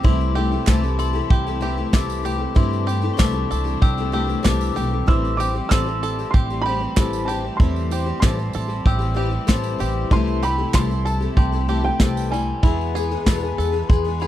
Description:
indie folk with a building arrangement; 95 BPM; 4/4; straight; A minor; A4 = 438 Hz
glockenspiel with soft plastic mallets; second line; 0.0-14.3 s; A5 to E6; -31 LUFS; left 16 dB
picked twelve-string acoustic guitar; accompaniment; 0.0-14.3 s; E2 to G#4; -26 LUFS; left 7 dB
warm chamber string section; sustained chords; 0.0-14.3 s; C3 to E4; -31 LUFS; right 3 dB
bluegrass banjo; arpeggios; 0.0-14.3 s; G3 to A4; -30 LUFS; right 8 dB
upright bass; bass; 0.0-14.3 s; A1 to G2; -24 LUFS; equal
soft brush drum kit; drums; 0.0-14.0 s; kick drum, snare drum; -16 LUFS; equal
tambourine; percussion; 0.2-14.3 s; -42 LUFS; right 20 dB
group handclap; percussion; 0.7-13.4 s; -33 LUFS; right 8 dB
dark upright piano; melody; 5.1-14.3 s; G5 to E6; -28 LUFS; right 2 dB
small room ambience; dry, close 1970s-style studio recording; -18 LUFS; side -12 dB against mid
0.0-14.3 A section
0.0 C6; 5.1 Am7; 10.1 C6; 12.6 E

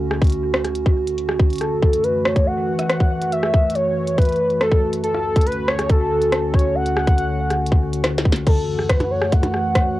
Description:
IDM; 140 BPM; 4/4; straight; F# minor; A4 = 440 Hz
warbly tape-like pad; sustained chords; 0.0-10.0 s; D2 to F#4; -22 LUFS; equal; chorus, built-in reverb, cassette tape
glitchy drum kit; drums; 0.1-9.8 s; crash cymbal, hi-hat, percussion blips, rim click, snare drum; -23 LUFS; equal; overdrive, cassette tape
electronic kick drum; drums; 0.2-9.8 s; -16 LUFS; equal; overdrive, cassette tape
warm velvety synth lead; melody; 1.6-10.0 s; A4 to F#5; -21 LUFS; equal; chorus, cassette tape, analog delay
bubbling stepped-filter texture; texture; 8.8-10.0 s; F#5; -32 LUFS; right 7 dB; chorus, built-in reverb, cassette tape, plate reverb
moderate booth ambience, RT60 0.2 s; home recording on cassette; -16 LUFS; side -16 dB against mid
0.0-8.5 A section; 8.5-10.0 A section
drum fill 8.0-8.5
0.0 Dmaj7; 1.6 F#m7; 5.0 Dmaj7; 8.5 F#m7

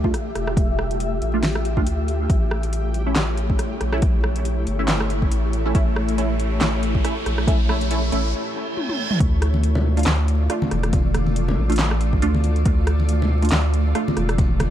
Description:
deep dubstep; 139 BPM; 4/4; swing 56% on 16ths, half-time; D harmonic minor; A4 = 441 Hz
granular cloud pad; sustained chords; 0.0-14.7 s; A3 to E5; -28 LUFS; left 1 dB; built-in reverb
filtered dub chord stab; stabs; 0.0-14.7 s; A3 to F4; -29 LUFS; right 2 dB; phaser, ensemble chorus, dub echo
saturated sub bass; bass; 0.0-14.7 s; E1 to D2; -21 LUFS; equal
electronic kick drum; drums; 0.0-14.5 s; -21 LUFS; equal; overdrive
flickering grainy texture; texture; 0.0-8.3 s; G4; -34 LUFS; left 1 dB; built-in reverb
deep house drum kit; drums; 0.1-14.7 s; handclaps, hi-hat, rim click, snare drum, toms; -26 LUFS; equal; overdrive
riser and reverse cymbal; sound effects; 4.7-9.2 s; -33 LUFS; right 3 dB
congas; percussion; 9.5-14.7 s; -27 LUFS; left 2 dB
little or no reverb; dark, warm production, vinyl crackle; -18 LUFS; side -11 dB against mid
0.0-9.2 A section; 9.2-14.7 B section
build-up 0.0-9.2; filter sweep on ambient pad 0.0-9.2; riser 4.7-8.3; break 8.3-9.2; reverse cymbal 8.3-9.2; drum fill 8.8-9.2; drop 9.2-14.7
0.0 Dm; 2.3 A; 9.2 Dm

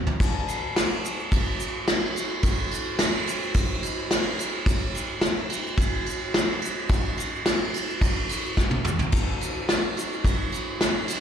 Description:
rock; 108 BPM; 4/4; straight
soft brush drum kit; drums; 0.1-11.2 s; crash cymbal, kick drum, ride cymbal, snare drum, splash cymbal, toms; -23 LUFS; equal
egg shaker; percussion; 0.2-11.2 s; -40 LUFS; left 2 dB
light reverb; live gig heard through the venue's PA, recital hall reverb; -23 LUFS; side -8 dB against mid
0.2-11.2 A section
drum fill 0.0, 8.6-9.1

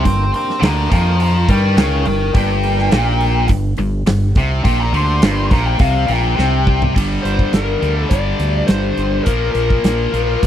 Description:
blues rock power trio and southern rock; 104 BPM; 4/4; straight; G minor; A4 = 440 Hz
bluesy overdriven lead guitar; melody; 0.0-10.5 s; Bb4 to C6; -20 LUFS; left 3 dB; distortion, slapback echo
overdriven tonewheel organ; sustained chords; 0.0-5.8 s; Bb3 to C5; -28 LUFS; right 4 dB; chorus vibrato, wide subtle chorus
tight distorted guitar; riff; 0.0-10.5 s; G2 to Bb3; -20 LUFS; equal; distortion
growling fingered electric bass; bass; 0.0-10.5 s; G1 to G2; -18 LUFS; equal; overdrive
huge arena drum kit; drums; 0.1-10.5 s; crash cymbal, hi-hat, kick drum, snare drum, toms; -18 LUFS; equal
little or no reverb; dry, close 1970s-style studio recording; -13 LUFS; side -10 dB against mid
0.0-7.0 A section; 7.0-10.5 B section
lead electric guitar solo 0.0-7.0; drum fill 6.4-7.0
0.0 Gm; 9.3 Bb5

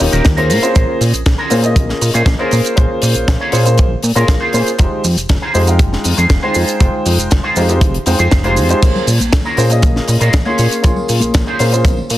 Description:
nu-disco, nu disco; 119 BPM; 4/4; straight; Bb dorian; A4 = 440 Hz
clear baby grand piano; accompaniment; 0.0-12.0 s; Ab3 to C6; -17 LUFS; equal; sidechain pumping, slapback echo
electric guitar with an envelope filter; riff; 0.0-12.1 s; Db4 to Db5; -20 LUFS; right 1 dB; analog chorus
fat analog bass; bass; 0.0-12.2 s; Eb1 to Bb2; -15 LUFS; equal
tight funk drum kit; drums; 0.0-12.2 s; crash cymbal, hi-hat, shaker, snare drum; -20 LUFS; equal
kick drum; drums; 0.3-11.9 s; -13 LUFS; equal; soft clipping on snare
tambourine and congas; percussion; 8.8-12.2 s; -23 LUFS; left 2 dB
light reverb, small room ambience; dense, heavily limited modern master; -11 LUFS; side -14 dB against mid
0.0-12.2 A section
0.0 Eb7; 0.5 Bbm7; 4.8 Fm7; 8.8 Bbm7

